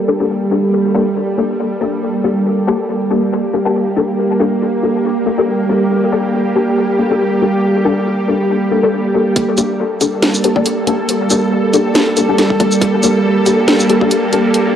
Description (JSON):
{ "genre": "deep dubstep", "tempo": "139 BPM", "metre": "4/4", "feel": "swing 55% on 16ths, half-time", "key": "G minor", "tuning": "A4 = 441 Hz", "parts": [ { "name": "bowed-like drone", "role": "sustained chords", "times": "0.0-14.8 s", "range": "G3 to A4", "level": "-14 LUFS", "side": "right 2 dB", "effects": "built-in reverb, cassette tape" }, { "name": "filtered dub chord stab", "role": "stabs", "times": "0.1-14.7 s", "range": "Bb3 to A4", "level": "-17 LUFS", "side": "left 5 dB", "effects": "ensemble chorus, vintage 12-bit sampler grit, cassette tape, dub echo" }, { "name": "electronic kick drum", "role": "drums", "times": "9.4-14.1 s", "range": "none", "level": "-18 LUFS", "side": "right 1 dB", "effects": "high-pass filter on kick, studio reverb, cassette tape" }, { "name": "garage drum kit", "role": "drums", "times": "9.4-14.6 s", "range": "hi-hat, shaker, snare drum", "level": "-16 LUFS", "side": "equal", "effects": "studio reverb, cassette tape" } ], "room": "wet spring reverb, RT60 2.0 s", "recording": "home recording on cassette", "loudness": "-12 LUFS", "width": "side -9 dB against mid", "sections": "0.0-9.4 A section; 9.4-14.8 B section", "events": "filter sweep on synth drone 0.0-9.4; build-up 9.4-14.8", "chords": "0.0 Gmadd9" }